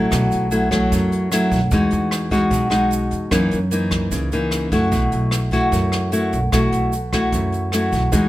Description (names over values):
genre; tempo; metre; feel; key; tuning
bossa nova; 150 BPM; 4/4; straight; unclear; A4 = 440 Hz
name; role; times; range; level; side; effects
nylon-string guitar; accompaniment; 0.0-8.3 s; F#2 to F#4; -18 LUFS; equal; none
upright bass; bass; 0.0-8.3 s; A1 to F#2; -23 LUFS; right 1 dB; none
jazz brush drum kit; drums; 0.1-8.2 s; hi-hat, kick drum, rim click; -26 LUFS; equal; none
egg shaker; percussion; 0.1-8.3 s; none; -32 LUFS; right 6 dB; none
room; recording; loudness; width
light reverb; none; -16 LUFS; side -15 dB against mid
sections
0.0-8.3 A section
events
none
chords
0.1 B7sus4; 1.7 Emaj9; 3.3 F#6; 4.9 B7sus4